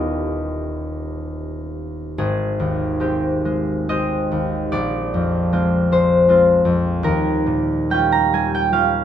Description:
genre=classical, solo harp piece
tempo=64-81 BPM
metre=3/4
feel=rubato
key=unclear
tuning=A4 = 440 Hz
part: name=concert harp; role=solo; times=0.0-9.0 s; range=Eb1 to Bb5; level=-17 LUFS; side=equal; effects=none
room=light reverb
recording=minimal, uncompressed stereo recording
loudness=-17 LUFS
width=side -9 dB against mid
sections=0.0-2.2 A section; 2.2-9.0 B section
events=none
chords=0.0 Ebaug7; 2.2 Abmaj7; 4.7 Bb9; 7.0 Eb9

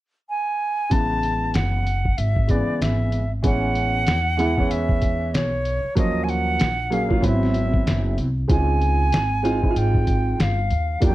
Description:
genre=hip hop, jazz-hop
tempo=95 BPM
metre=4/4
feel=swing 61% on 16ths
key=A major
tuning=A4 = 441 Hz
part: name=silver concert flute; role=melody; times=0.3-11.1 s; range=C#5 to A5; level=-25 LUFS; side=right 1 dB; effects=none
part: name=warm upright piano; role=accompaniment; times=0.9-11.1 s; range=C#3 to G#4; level=-24 LUFS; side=right 1 dB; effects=none
part: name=upright bass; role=bass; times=0.9-11.1 s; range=F#1 to E2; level=-23 LUFS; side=equal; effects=none
part: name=lo-fi sampler-style drum kit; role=drums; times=0.9-11.1 s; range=hi-hat, kick drum, snare drum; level=-22 LUFS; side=equal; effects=none
room=studio reverb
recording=dry, close 1970s-style studio recording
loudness=-19 LUFS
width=side -16 dB against mid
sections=0.9-3.4 A section; 3.4-11.1 B section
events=none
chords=0.0 N.C.; 0.9 Amaj7; 6.0 D#m7; 7.2 G#7alt; 8.5 C#maj7

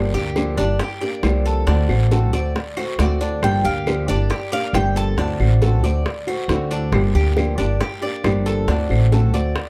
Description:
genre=latin, Cuban son and guajira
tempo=137 BPM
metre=4/4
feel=straight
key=G minor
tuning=A4 = 440 Hz
part: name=nylon-string guitar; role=accompaniment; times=0.0-9.6 s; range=D3 to G4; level=-26 LUFS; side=equal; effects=none
part: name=Cuban tres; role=arpeggios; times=0.0-9.7 s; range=D4 to D5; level=-30 LUFS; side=equal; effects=none
part: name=upright bass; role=bass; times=0.0-9.5 s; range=G1 to D2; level=-21 LUFS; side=equal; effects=none
part: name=bongos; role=percussion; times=0.4-9.7 s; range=none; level=-28 LUFS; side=equal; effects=none
part: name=claves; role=percussion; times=0.4-9.1 s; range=none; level=-38 LUFS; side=equal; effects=none
part: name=guiro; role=percussion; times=0.4-9.7 s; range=none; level=-39 LUFS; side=equal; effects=none
part: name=Cuban tres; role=melody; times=3.0-5.4 s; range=D5 to A5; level=-27 LUFS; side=equal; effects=none
room=light reverb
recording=dark, warm production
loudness=-19 LUFS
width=mono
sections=0.0-9.7 A section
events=none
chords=0.0 Gm11; 1.7 D7; 3.4 Gm9; 5.2 D7; 6.9 Gm9; 8.7 D7

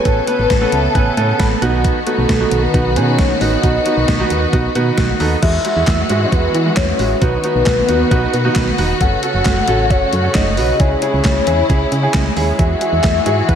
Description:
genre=synth-pop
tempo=134 BPM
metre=4/4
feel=straight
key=E major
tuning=A4 = 438 Hz
part: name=soft octave-layered synth lead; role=melody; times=0.0-13.6 s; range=A4 to F#5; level=-19 LUFS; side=left 2 dB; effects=chorus, phaser, analog delay, shimmer reverb
part: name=warm studio string section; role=sustained chords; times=0.0-13.6 s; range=C#3 to A4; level=-21 LUFS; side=left 2 dB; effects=shimmer reverb
part: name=clear grand piano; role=accompaniment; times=0.1-13.6 s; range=G#3 to B5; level=-20 LUFS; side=right 4 dB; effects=shimmer reverb
part: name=solid FM bass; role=bass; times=0.1-13.6 s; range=E1 to E3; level=-18 LUFS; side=equal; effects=none
part: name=gated 80s digital drum machine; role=drums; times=0.1-13.6 s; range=crash cymbal, handclaps, hi-hat, kick drum, snare drum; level=-18 LUFS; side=equal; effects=gated reverb, gated reverb snare, overdrive
room=wet lush hall reverb, RT60 2.0 s, digital ambience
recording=dreamy mix soaked in reverb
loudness=-12 LUFS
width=side -8 dB against mid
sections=0.0-5.4 A section; 5.4-13.6 B section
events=grand piano fill 0.5-1.8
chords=0.1 Aadd9; 1.6 B; 5.4 Eadd9; 7.2 B; 9.0 F#m; 10.8 C#m; 12.6 Eadd9

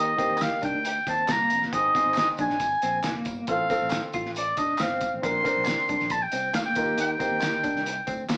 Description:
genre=uptempo 1960s-style soul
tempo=137 BPM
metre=4/4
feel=straight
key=unclear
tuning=A4 = 440 Hz
part: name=warm oboe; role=melody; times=0.0-8.3 s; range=D5 to C6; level=-24 LUFS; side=equal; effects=none
part: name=warm baby grand piano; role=accompaniment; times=0.0-7.9 s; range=Bb3 to Bb4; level=-30 LUFS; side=equal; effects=none
part: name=fingered electric bass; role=bass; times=0.0-8.4 s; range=F1 to Eb2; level=-37 LUFS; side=equal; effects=none
part: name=electric guitar through a small old amp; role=riff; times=0.2-8.4 s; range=Bb3 to F4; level=-32 LUFS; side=equal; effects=tremolo
part: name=cloth-damped thuddy drum kit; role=drums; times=0.2-8.4 s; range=hi-hat, kick drum, snare drum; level=-33 LUFS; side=equal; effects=none
part: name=tambourine and handclaps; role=percussion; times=0.2-8.4 s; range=none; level=-40 LUFS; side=equal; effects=none
room=moderate studio reverb, RT60 0.5 s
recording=band playing live in one room, small speaker sound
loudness=-22 LUFS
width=side -34 dB against mid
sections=0.0-8.4 A section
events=none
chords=0.0 Eb; 1.7 Ab; 3.5 F/A; 5.2 Bbadd9; 6.8 Eb

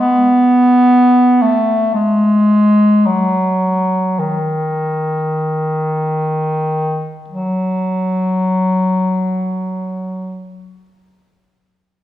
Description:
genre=classical, free, expressive piece for unaccompanied bass clarinet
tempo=free time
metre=none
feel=none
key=F# dorian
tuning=A4 = 440 Hz
part: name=clear bass clarinet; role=solo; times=0.0-10.5 s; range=D#3 to B3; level=-13 LUFS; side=equal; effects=none
room=wet recital hall reverb, RT60 1.7 s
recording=recorded in a church or concert hall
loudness=-12 LUFS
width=side -13 dB against mid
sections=0.0-7.3 A section; 7.3-12.0 B section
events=slowing down 0.0-7.3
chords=none

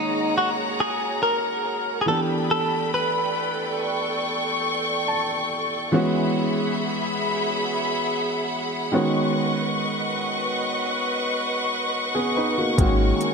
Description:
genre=contemporary R&B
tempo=70 BPM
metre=4/4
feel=straight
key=unclear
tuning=A4 = 440 Hz
part: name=direct-recorded clean electric guitar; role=melody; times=0.0-5.5 s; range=D#4 to B4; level=-24 LUFS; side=equal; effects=wide subtle chorus, digital delay
part: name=warm grand piano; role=accompaniment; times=0.0-13.3 s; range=D#3 to A5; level=-26 LUFS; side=right 1 dB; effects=none
part: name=warm studio string section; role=sustained chords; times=0.0-13.3 s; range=G#4 to C#6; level=-25 LUFS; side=left 1 dB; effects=sidechain pumping
part: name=warm sub bass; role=bass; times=12.8-13.1 s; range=G#1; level=-22 LUFS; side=equal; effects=none
part: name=smooth R&B drum kit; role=drums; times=12.8-13.3 s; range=hi-hat, kick drum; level=-21 LUFS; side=equal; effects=none
room=wet lush hall reverb, RT60 2.9 s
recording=bright 1980s-style digital production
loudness=-21 LUFS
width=side -4 dB against mid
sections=0.0-13.3 A section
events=grand piano fill 4.6-5.9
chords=0.0 G#9sus4; 2.1 A9sus4; 5.9 F#9sus4; 8.9 C#9sus4; 12.8 G#9sus4

